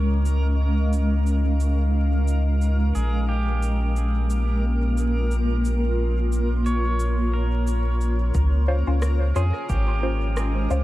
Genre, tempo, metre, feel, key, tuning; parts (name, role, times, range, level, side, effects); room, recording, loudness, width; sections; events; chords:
ambient dub; 89 BPM; 4/4; swing 56% on 16ths; A4 = 444 Hz
granular cloud pad; sustained chords; 0.0-10.8 s; Ab3 to C6; -28 LUFS; equal; built-in reverb
pedal steel guitar; arpeggios; 0.0-10.8 s; G4 to Db5; -34 LUFS; right 2 dB; dub echo
soft dub sub bass; bass; 0.0-10.8 s; Ab1 to F2; -21 LUFS; equal
backwards swelling texture; texture; 0.0-10.8 s; Bb4; -36 LUFS; right 2 dB; built-in reverb
electronic cabasa and rim click; drums; 0.3-10.8 s; -37 LUFS; equal; dub echo
electronic kick drum; drums; 8.3-9.8 s; -27 LUFS; equal
filtered dub chord stab; stabs; 8.7-10.8 s; Db4 to C5; -29 LUFS; left 2 dB; phaser, cassette tape, dub echo
digital ambience; vinyl crackle; -20 LUFS; side -16 dB against mid
0.0-8.3 A section; 8.3-10.8 B section
filter sweep on ambient pad 0.0-8.3
0.0 Db; 3.0 Bbm9; 8.3 Dbmaj7